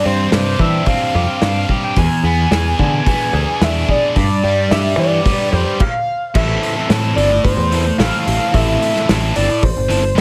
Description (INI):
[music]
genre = indie rock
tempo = 110 BPM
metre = 4/4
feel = straight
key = A minor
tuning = A4 = 438 Hz
[part]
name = overdriven synth lead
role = melody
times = 0.0-10.2 s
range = C5 to G#5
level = -22 LUFS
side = equal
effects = distortion, chorus, phaser, plate reverb, tape echo
[part]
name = overdriven electric guitar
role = riff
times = 0.0-10.2 s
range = E2 to A4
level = -21 LUFS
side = equal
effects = none
[part]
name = picked electric bass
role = bass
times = 0.1-10.2 s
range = G1 to E3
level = -20 LUFS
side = equal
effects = none
[part]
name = loose indie drum kit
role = drums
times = 0.3-10.2 s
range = crash cymbal, hi-hat, kick drum, snare drum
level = -22 LUFS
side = equal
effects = none
[sound]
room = light reverb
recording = none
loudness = -16 LUFS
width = mono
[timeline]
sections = 0.0-6.3 A section; 6.3-10.2 B section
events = stop 5.8-6.3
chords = 0.0 G7sus4; 2.0 E7; 4.2 G7; 6.3 Am